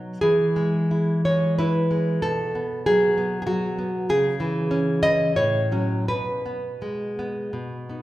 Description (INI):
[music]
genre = romantic piece for solo classical guitar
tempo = 81-98 BPM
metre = 3/4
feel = rubato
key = E major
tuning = A4 = 440 Hz
[part]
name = nylon-string guitar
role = solo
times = 0.0-8.0 s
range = A2 to D#5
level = -21 LUFS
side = equal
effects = none
[sound]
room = wet recital hall reverb, RT60 1.7 s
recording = recorded in a church or concert hall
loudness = -20 LUFS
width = side -16 dB against mid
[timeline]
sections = 0.2-8.0 A section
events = none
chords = 0.2 E; 2.2 B5; 4.1 C#m; 5.4 F#m/A; 6.1 G#m/B